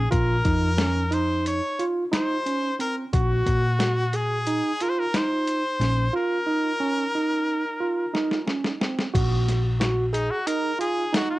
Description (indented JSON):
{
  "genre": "progressive instrumental, band music in an uneven meter",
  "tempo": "180 BPM (eighths)",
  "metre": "9/8",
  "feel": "straight",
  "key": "unclear",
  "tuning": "A4 = 440 Hz",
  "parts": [
    { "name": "brilliant trumpet", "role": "melody", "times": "0.0-11.4 s", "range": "Eb4 to Db5", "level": "-27 LUFS", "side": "left 1 dB", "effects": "cassette tape, plate reverb" },
    { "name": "overdriven tine electric piano", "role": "arpeggios", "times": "0.0-11.4 s", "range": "C4 to Ab4", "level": "-26 LUFS", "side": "right 2 dB", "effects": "cassette tape, analog delay" },
    { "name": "hollow-body short-scale picked electric bass", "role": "bass", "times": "0.0-10.3 s", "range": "Bb1 to Bb2", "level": "-24 LUFS", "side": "left 1 dB", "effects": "none" },
    { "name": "boom bap sampler-style drum kit", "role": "drums", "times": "0.1-11.3 s", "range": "crash cymbal, hi-hat, kick drum, snare drum", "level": "-26 LUFS", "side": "left 1 dB", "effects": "none" }
  ],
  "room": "wet small room reverb, RT60 0.5 s",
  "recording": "home recording on cassette",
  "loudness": "-22 LUFS",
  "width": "side -17 dB against mid",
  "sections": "0.0-9.1 A section; 9.1-11.4 B section",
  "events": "drum fill 8.1-9.1; trumpet solo 9.1-11.4",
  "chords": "0.1 Bbm; 3.1 Ab7(no3)/Bb; 6.1 Bbm; 9.1 Ab7(no3)/Bb (rootless)"
}